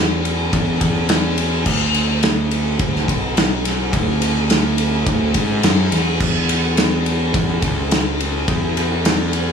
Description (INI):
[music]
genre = quiet-loud alternative rock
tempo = 106 BPM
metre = 4/4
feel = straight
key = unclear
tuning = A4 = 445 Hz
[part]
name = fuzz picked electric bass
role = bass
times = 0.0-9.5 s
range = B1 to G#2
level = -19 LUFS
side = equal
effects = overdrive
[part]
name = loose indie drum kit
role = drums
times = 0.3-9.5 s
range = crash cymbal, kick drum, ride cymbal, snare drum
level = -17 LUFS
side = equal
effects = none
[sound]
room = moderate small room reverb, RT60 0.5 s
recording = studio reverb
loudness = -15 LUFS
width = side -6 dB against mid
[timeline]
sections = 0.0-9.5 A section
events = none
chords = none